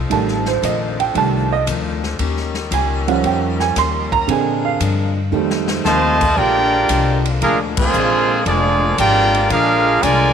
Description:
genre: jazz, big band swing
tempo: 115 BPM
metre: 4/4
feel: swing 69% on 8ths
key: Bb major from 6.4 s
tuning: A4 = 436 Hz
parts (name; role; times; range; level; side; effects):
- edgy saxophone section; sustained chords; 0.0-10.3 s; D3 to C5; -27 LUFS; left 4 dB; none
- upright bass; bass; 0.0-10.3 s; F1 to Bb2; -21 LUFS; left 2 dB; none
- dark baby grand piano; accompaniment; 0.1-6.2 s; D3 to C6; -18 LUFS; right 9 dB; none
- picked steel-string acoustic guitar; accompaniment; 0.1-10.3 s; F2 to G4; -27 LUFS; left 13 dB; none
- swinging big-band drum kit; drums; 0.1-10.2 s; crash cymbal, hi-hat, kick drum, ride cymbal, snare drum; -26 LUFS; left 2 dB; none
- brilliant trombone section; second line; 5.8-10.3 s; C3 to G4; -22 LUFS; right 10 dB; none
- warm trumpet section; melody; 5.9-10.3 s; Bb3 to A5; -15 LUFS; right 1 dB; none
room: light reverb, small room reverb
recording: 1960s-style stereo with parts hard left and right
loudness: -14 LUFS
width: side -7 dB against mid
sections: 0.0-6.4 A section; 6.4-10.3 B section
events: grand piano solo 0.0-6.4; drum fill 5.3-5.9; band accent 7.7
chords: 0.0 F7; 2.2 Eb7; 4.3 Bb7; 5.3 F7; 6.4 Bb7

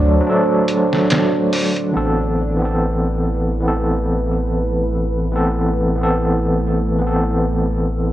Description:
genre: trip hop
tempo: 71 BPM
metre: 4/4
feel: swing 54% on 16ths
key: A dorian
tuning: A4 = 440 Hz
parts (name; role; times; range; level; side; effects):
- overdriven tine electric piano; accompaniment; 0.0-8.1 s; E3 to A4; -18 LUFS; equal; tremolo, tape echo
- deep dark ambient pad; sustained chords; 0.0-8.1 s; A3 to C5; -23 LUFS; right 2 dB; chorus, built-in reverb
- warm sub bass; bass; 0.0-8.1 s; A1 to D2; -21 LUFS; equal; tube saturation
- bowed-like drone; texture; 0.0-2.0 s; D4; -30 LUFS; right 1 dB; built-in reverb
- trip hop sampler-style drum kit; drums; 0.7-1.9 s; hi-hat, snare drum; -20 LUFS; equal; overdrive, studio reverb
room: light reverb, digital ambience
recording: worn, warbling old tape, cassette tape, warbly pitch drift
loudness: -16 LUFS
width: side -14 dB against mid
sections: 0.0-1.9 A section; 1.9-8.1 B section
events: break 0.3-1.9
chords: 0.0 D; 1.9 Amadd9

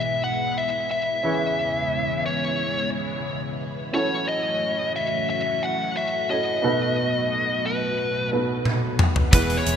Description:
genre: 1980s-style pop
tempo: 89 BPM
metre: 4/4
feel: straight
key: unclear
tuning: A4 = 438 Hz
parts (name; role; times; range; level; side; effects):
- biting lead guitar; melody; 0.0-9.8 s; B4 to F#5; -24 LUFS; left 1 dB; overdrive, digital delay
- dark baby grand piano; accompaniment; 0.0-9.8 s; B2 to C#5; -28 LUFS; right 2 dB; lush chorus
- string machine, cellos; sustained chords; 0.0-9.8 s; E2 to F#4; -30 LUFS; equal; phaser, ensemble chorus
- gated 80s drum kit; drums; 8.7-9.8 s; hi-hat, kick drum, toms; -19 LUFS; equal; none
- cranked stack guitar; accompaniment; 9.3-9.8 s; E3 to E4; -31 LUFS; left 6 dB; overdrive, ensemble chorus
- vintage muted fingered electric bass; bass; 9.3-9.8 s; E1; -25 LUFS; equal; none
room: moderate lush hall reverb, RT60 2.9 s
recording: bright 1980s-style digital production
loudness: -21 LUFS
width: side -8 dB against mid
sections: 0.0-9.8 A section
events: drum fill 8.7-9.3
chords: 0.0 E; 1.2 C#m7/E; 3.9 F#m7; 6.6 B7

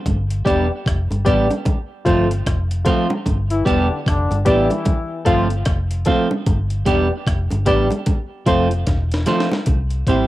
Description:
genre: roots reggae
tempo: 75 BPM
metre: 4/4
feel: swing 61% on 16ths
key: unclear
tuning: A4 = 439 Hz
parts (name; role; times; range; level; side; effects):
- vintage muted fingered electric bass; bass; 0.1-10.3 s; E1 to C2; -20 LUFS; equal; none
- breakbeat sampler-style drum kit; drums; 0.1-10.3 s; hi-hat, kick drum, rim click, snare drum; -20 LUFS; equal; cassette tape
- bongos; percussion; 0.1-9.9 s; none; -25 LUFS; right 2 dB; none
- clean electric guitar; accompaniment; 0.4-10.3 s; F3 to G4; -22 LUFS; right 3 dB; cassette tape, tape echo, plate reverb
- barky reed electric piano; stabs; 0.5-10.3 s; E3 to F5; -21 LUFS; left 2 dB; overdrive, fast tremolo, cassette tape, plate reverb
- brilliant trombone section; second line; 3.5-5.4 s; D3 to F4; -24 LUFS; left 3 dB; cassette tape, tape echo, plate reverb
room: moderate small room ambience, RT60 0.5 s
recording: home recording on cassette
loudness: -16 LUFS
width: side -16 dB against mid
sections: 0.0-9.7 A section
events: drum fill 8.9-9.7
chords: 0.1 G; 1.7 F; 3.3 G; 4.9 F; 6.5 G; 8.1 F; 9.7 C

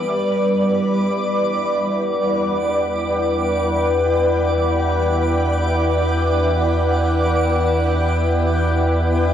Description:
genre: ambient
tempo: free time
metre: none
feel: none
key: E minor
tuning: A4 = 440 Hz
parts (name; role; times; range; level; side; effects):
- granular cloud pad; sustained chords; 0.0-9.3 s; G3 to G5; -18 LUFS; equal; built-in reverb, shimmer reverb
- soft round pluck; arpeggios; 0.0-1.6 s; G4 to E5; -39 LUFS; equal; none
- deep rumbling drone; bass; 2.5-9.3 s; E2; -21 LUFS; equal; built-in reverb
- organ-like drone; drone; 0.0-9.3 s; E3 to B3; -32 LUFS; left 1 dB; ensemble chorus, built-in reverb
- twinkling granular texture; texture; 0.0-9.3 s; D6; -29 LUFS; right 2 dB; built-in reverb, shimmer reverb
room: wet concert hall reverb, RT60 2.2 s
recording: worn, warbling old tape, cassette tape, warbly pitch drift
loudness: -16 LUFS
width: side -9 dB against mid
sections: 0.1-9.3 A section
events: fade-in on synth drone 0.1-9.3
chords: 0.1 Em9

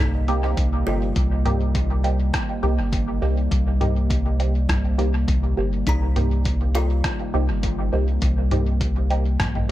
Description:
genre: ambient dub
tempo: 102 BPM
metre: 4/4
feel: swing 53% on 16ths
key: C minor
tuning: A4 = 440 Hz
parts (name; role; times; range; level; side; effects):
- warbly tape-like pad; sustained chords; 0.0-9.7 s; C3 to D5; -29 LUFS; equal; chorus, built-in reverb
- kalimba; arpeggios; 0.0-9.3 s; Eb4 to Bb5; -34 LUFS; left 4 dB; analog delay
- round analog bass; bass; 0.0-9.7 s; G1 to C2; -21 LUFS; equal; none
- filtered dub chord stab; stabs; 0.3-9.7 s; Bb3 to G4; -29 LUFS; right 2 dB; phaser, analog chorus, cassette tape, dub echo
- lo-fi sampler-style drum kit; drums; 0.3-9.7 s; congas, hi-hat, rim click; -29 LUFS; equal; dub echo
- electronic kick drum; drums; 0.6-9.5 s; none; -27 LUFS; equal; overdrive
room: digital ambience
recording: echo-heavy mix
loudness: -19 LUFS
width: side -14 dB against mid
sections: 0.0-9.7 A section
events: none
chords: 0.0 Cm7

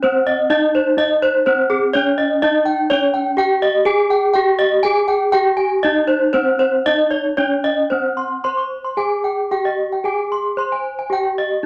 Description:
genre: gamelan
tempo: 112-125 BPM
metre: 4/4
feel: straight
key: C pelog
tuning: A4 = 441 Hz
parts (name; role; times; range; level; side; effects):
- gamelan-type bronze metallophone; melody; 0.0-11.7 s; C4 to C5; -22 LUFS; equal; none
- gamelan-type bronze metallophone; arpeggios; 0.0-11.5 s; Ab4-20c to Db6+20c; -19 LUFS; equal; none
room: wet club reverb, RT60 0.9 s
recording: none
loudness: -17 LUFS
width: mono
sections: 0.0-7.9 A section; 7.9-11.7 B section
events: none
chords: none

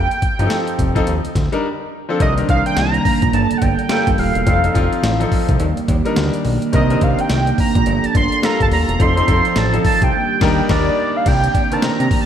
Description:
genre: R&B, new jack swing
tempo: 106 BPM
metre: 4/4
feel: swing 61% on 16ths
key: unclear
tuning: A4 = 440 Hz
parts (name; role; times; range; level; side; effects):
- octave-doubled lead; melody; 0.0-12.3 s; D5 to C6; -20 LUFS; right 2 dB; chorus, phaser, digital delay
- fat analog bass; bass; 0.0-12.1 s; Eb1 to C3; -20 LUFS; equal; none
- dusty soul sampler-style drum kit; drums; 0.1-12.3 s; crash cymbal, hi-hat, kick drum, snare drum; -20 LUFS; equal; overdrive
- bright concert grand piano; accompaniment; 0.4-12.3 s; Eb3 to Bb4; -21 LUFS; left 2 dB; none
- chorused pulse-width pad; sustained chords; 2.2-12.3 s; C3 to D5; -22 LUFS; right 3 dB; none
- cowbell; percussion; 2.2-12.0 s; none; -34 LUFS; left 2 dB; none
room: moderate scoring stage reverb, RT60 1.8 s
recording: none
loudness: -14 LUFS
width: side -9 dB against mid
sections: 0.0-2.2 A section; 2.2-11.3 B section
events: break 1.6-2.2; band accent 10.1-11.3; silent gap 10.7-11.3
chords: 0.0 F7; 1.1 Ebmaj7; 1.6 Dm7; 2.2 Cm9; 3.3 Gm9; 4.5 F7; 5.6 Ebmaj7; 6.7 Cm9; 7.9 Gm9; 9.0 F7; 10.1 Ebmaj7; 11.3 Cm9

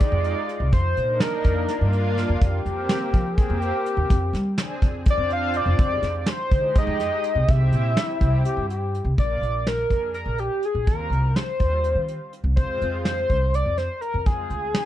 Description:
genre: progressive instrumental, band music in an uneven meter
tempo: 248 BPM (eighths)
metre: 7/8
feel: straight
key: F dorian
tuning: A4 = 440 Hz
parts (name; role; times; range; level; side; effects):
- pulse-width lead; melody; 0.0-2.2, 5.1-14.9 s; G4 to F5; -25 LUFS; left 1 dB; chorus, plate reverb
- lush unison pad; accompaniment; 0.0-14.4 s; G3 to Ab4; -31 LUFS; right 1 dB; chorus
- soft brush drum kit; drums; 0.0-14.9 s; hi-hat, kick drum, snare drum; -21 LUFS; equal; none
- upright bass; bass; 0.1-14.7 s; Bb1 to G3; -24 LUFS; equal; none
- breathy trombone; second line; 2.4-4.6, 8.0-9.1 s; E4 to Ab4; -28 LUFS; left 3 dB; none
room: light reverb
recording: dark, warm production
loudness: -20 LUFS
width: side -12 dB against mid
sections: 0.0-9.2 A section; 9.2-14.9 B section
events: none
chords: 0.0 Fm7; 0.7 Cm7/F; 2.4 Eb69 (rootless); 4.1 Fm69; 5.8 Fm7; 7.5 C; 9.2 Bb; 10.9 Eb6; 12.6 Fm

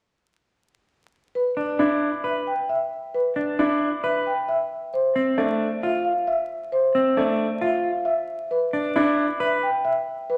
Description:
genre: classical, minimalist pattern music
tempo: 134 BPM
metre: 4/4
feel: straight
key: unclear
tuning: A4 = 442 Hz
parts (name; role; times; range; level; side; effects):
- marimba with soft mallets; melody; 1.4-10.4 s; B4 to G5; -26 LUFS; equal; none
- clean electric guitar; arpeggios; 1.6-9.7 s; C4 to B4; -28 LUFS; equal; none
- clear grand piano; accompaniment; 1.8-9.3 s; A3 to D4; -26 LUFS; equal; none
room: wet recital hall reverb, RT60 1.4 s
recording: vinyl crackle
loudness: -23 LUFS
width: mono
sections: 1.3-10.4 A section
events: none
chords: 1.3 G (rootless); 4.9 Fmaj7; 8.5 G (rootless)

